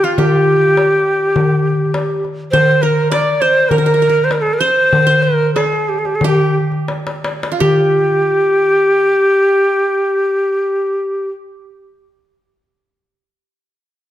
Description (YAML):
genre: Arabic maqam ensemble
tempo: 82-103 BPM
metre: 4/4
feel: straight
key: G maqam bayati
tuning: A4 = 441 Hz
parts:
  - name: breathy bright ney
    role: melody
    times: 0.0-11.3 s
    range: F4 to D5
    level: -13 LUFS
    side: equal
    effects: none
  - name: qanun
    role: second line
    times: 0.0-12.0 s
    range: F4 to D5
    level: -21 LUFS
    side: right 4 dB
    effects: none
  - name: darbuka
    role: percussion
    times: 0.2-8.0 s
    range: none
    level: -17 LUFS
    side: left 2 dB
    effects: none
room: moderate recital hall reverb, RT60 1.8 s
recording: none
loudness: -12 LUFS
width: side -12 dB against mid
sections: 0.0-7.6 A section; 7.6-10.5 B section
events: slowing down 2.5-7.6; drum fill 6.9-7.6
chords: none